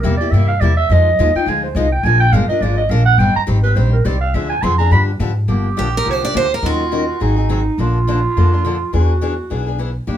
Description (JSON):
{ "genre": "acoustic string swing (jazz manouche)", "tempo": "209 BPM", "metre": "4/4", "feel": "swing 57% on 8ths", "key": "C minor", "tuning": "A4 = 439 Hz", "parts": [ { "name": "growling clarinet", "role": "second line", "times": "0.0-10.2 s", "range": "Eb4 to C6", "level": "-19 LUFS", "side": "right 4 dB", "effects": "none" }, { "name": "picked steel-string acoustic guitar", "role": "accompaniment", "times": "0.0-10.2 s", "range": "C3 to C5", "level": "-22 LUFS", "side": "left 5 dB", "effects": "none" }, { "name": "upright bass", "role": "bass", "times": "0.0-10.2 s", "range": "G1 to Ab2", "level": "-16 LUFS", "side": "equal", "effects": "none" }, { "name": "picked steel-string acoustic guitar", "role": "melody", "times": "5.8-7.6 s", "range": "Gb4 to D5", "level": "-20 LUFS", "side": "right 4 dB", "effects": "none" } ], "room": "wet studio reverb, RT60 0.5 s", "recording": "band playing live in one room", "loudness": "-13 LUFS", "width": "side -10 dB against mid", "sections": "0.0-5.5 A section; 5.5-10.2 B section", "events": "clarinet solo 0.0-5.5", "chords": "0.0 C7; 0.9 Fm7; 2.0 Bb7; 3.2 Eb6; 4.3 Dm7b5; 4.9 G7; 5.5 Gm7; 6.6 Ebm7; 7.2 Ab7; 7.8 Bbmaj7; 8.9 E9", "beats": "0.04 0.32 0.61 | 0.90 1.18 1.47 1.76 | 2.04 2.33 2.62 2.90 | 3.19 3.48 3.76 4.05 | 4.34 4.62 4.91 5.20 | 5.48 5.77 6.06 6.35 | 6.63 6.92 7.21 7.50 | 7.78 8.07 8.36 8.64 | 8.93 9.22 9.51 9.79 | 10.08" }